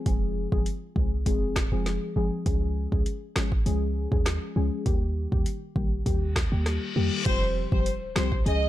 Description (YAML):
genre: dancehall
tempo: 100 BPM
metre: 4/4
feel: straight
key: F minor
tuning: A4 = 440 Hz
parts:
  - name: deep mellow chord stab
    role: accompaniment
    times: 0.0-8.7 s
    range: Eb3 to Ab4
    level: -31 LUFS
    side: left 3 dB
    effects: chorus, sidechain pumping
  - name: clean 808-style bass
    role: bass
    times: 0.1-8.7 s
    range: F1 to F2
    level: -28 LUFS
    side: equal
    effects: none
  - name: afro-pop drum kit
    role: drums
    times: 0.1-8.6 s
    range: crash cymbal, hi-hat, kick drum, rim click, snare drum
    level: -27 LUFS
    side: equal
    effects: none
  - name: reverse cymbal and impact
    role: sound effects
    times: 6.4-8.7 s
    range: none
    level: -36 LUFS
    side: left 2 dB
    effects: none
  - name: warm symphonic violin section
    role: melody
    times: 7.3-8.7 s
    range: C5 to Eb5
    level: -29 LUFS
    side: equal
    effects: ping-pong delay
room: digital ambience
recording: dark, warm production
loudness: -24 LUFS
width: side -14 dB against mid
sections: 0.0-7.3 A section; 7.3-8.7 B section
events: reverse cymbal 6.4-7.3; impact 7.3-8.7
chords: 0.0 Fm; 2.5 Db; 4.9 Eb; 7.3 Fsus2